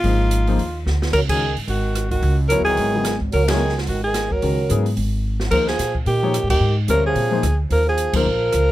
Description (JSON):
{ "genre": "modal jazz", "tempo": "219 BPM", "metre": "4/4", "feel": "swing 59% on 8ths", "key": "unclear", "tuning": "A4 = 440 Hz", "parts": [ { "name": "warm alto saxophone", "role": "melody", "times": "0.0-8.7 s", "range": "F4 to A#4", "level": "-21 LUFS", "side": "equal", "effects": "none" }, { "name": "warm grand piano", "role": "accompaniment", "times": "0.0-8.2 s", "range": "B#2 to C#5", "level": "-24 LUFS", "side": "left 6 dB", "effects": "none" }, { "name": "upright bass", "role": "bass", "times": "0.0-8.7 s", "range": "Ab1 to A#2", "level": "-20 LUFS", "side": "equal", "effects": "none" }, { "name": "open jazz drum kit", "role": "drums", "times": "0.0-8.6 s", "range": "crash cymbal, hi-hat, kick drum, ride cymbal, rim click, snare drum", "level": "-27 LUFS", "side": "right 1 dB", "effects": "none" }, { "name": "trombone with cup mute", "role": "second line", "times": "1.1-8.7 s", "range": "D#3 to F#3", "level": "-28 LUFS", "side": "right 8 dB", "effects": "none" } ], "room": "little or no reverb", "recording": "close, detailed microphones", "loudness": "-17 LUFS", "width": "side -15 dB against mid", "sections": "0.0-1.1 A section; 1.1-8.7 B section", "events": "drum fill 0.9, 5.2; band accent 1.3, 3.5, 6.5, 8.1", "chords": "0.0 Ab69; 1.1 C#9sus4; 5.5 D#9sus4", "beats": "| 0.04 0.31 0.59 0.86 | 1.14 1.41 1.68 1.96 | 2.23 2.51 2.78 3.05 | 3.33 3.60 3.88 4.15 | 4.42 4.70 4.97 5.25 | 5.52 5.79 6.07 6.34 | 6.61 6.89 7.16 7.43 | 7.71 7.98 8.26 8.53" }